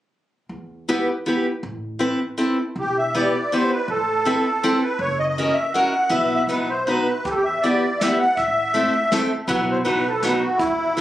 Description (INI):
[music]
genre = musette waltz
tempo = 161 BPM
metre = 3/4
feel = rubato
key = E minor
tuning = A4 = 440 Hz
[part]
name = upright bass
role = bass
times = 0.5-11.0 s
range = E1 to E2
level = -34 LUFS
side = equal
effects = none
[part]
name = picked steel-string acoustic guitar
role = accompaniment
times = 0.9-11.0 s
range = F#3 to B4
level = -21 LUFS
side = equal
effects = none
[part]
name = musette accordion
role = melody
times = 2.8-11.0 s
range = E4 to F#5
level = -20 LUFS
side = equal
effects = tape echo
[part]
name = jazz brush drum kit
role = drums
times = 7.2-11.0 s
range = hi-hat, kick drum, snare drum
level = -30 LUFS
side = right 1 dB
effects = none
[sound]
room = moderate booth ambience, RT60 0.2 s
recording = recorded on a phone in the room, club reverb, compression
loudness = -18 LUFS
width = side -13 dB against mid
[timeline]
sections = 0.5-2.8 A section; 2.8-11.0 B section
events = none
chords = 0.5 Em; 1.6 Amadd9; 2.8 Em; 3.9 Amadd9; 5.0 F#7; 6.1 Bsus4; 6.5 B; 7.2 Em; 8.4 Am; 9.5 Bsus4; 9.9 B